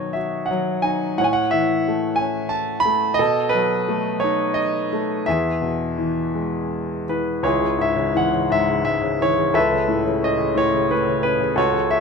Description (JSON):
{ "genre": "classical, lyrical solo piano", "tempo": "79-92 BPM", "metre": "3/4", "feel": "rubato", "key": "unclear", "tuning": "A4 = 437 Hz", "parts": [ { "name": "clear grand piano", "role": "solo", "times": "0.0-12.0 s", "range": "C#2 to B5", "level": "-18 LUFS", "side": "equal", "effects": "none" } ], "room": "light reverb", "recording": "close, detailed microphones", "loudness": "-18 LUFS", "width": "side -5 dB against mid", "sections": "0.0-7.4 A section; 7.4-12.0 B section", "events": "none", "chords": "0.0 B; 1.2 A; 3.2 B7; 5.3 E; 7.4 C#m; 9.6 Aadd9/C#", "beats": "0.50 | 1.19 1.86 2.52 | 3.19 3.87 4.57 | 5.26 5.97 6.71 | 7.44 8.16 8.87 | 9.56 10.24 10.91 | 11.57" }